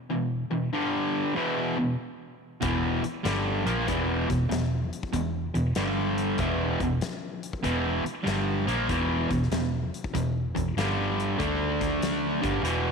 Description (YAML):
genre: blues rock power trio and southern rock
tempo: 96 BPM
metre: 4/4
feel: swing 66% on 8ths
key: unclear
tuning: A4 = 440 Hz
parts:
  - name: distorted electric guitar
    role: riff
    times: 0.1-12.9 s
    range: E2 to D4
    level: -26 LUFS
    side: equal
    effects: distortion
  - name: vintage muted fingered electric bass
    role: bass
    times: 2.6-12.9 s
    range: E1 to D2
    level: -31 LUFS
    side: equal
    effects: none
  - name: huge arena drum kit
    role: drums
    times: 2.6-12.8 s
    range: hi-hat, kick drum, snare drum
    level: -34 LUFS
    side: left 3 dB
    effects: none
room: moderate echo chamber reverb, RT60 2.4 s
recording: 1960s-style stereo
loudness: -25 LUFS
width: side -5 dB against mid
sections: 0.0-12.9 A section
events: none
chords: 0.0 E5; 0.7 G5; 1.4 E5; 5.8 G5; 6.4 E5; 10.8 G5; 11.4 D5; 12.3 E5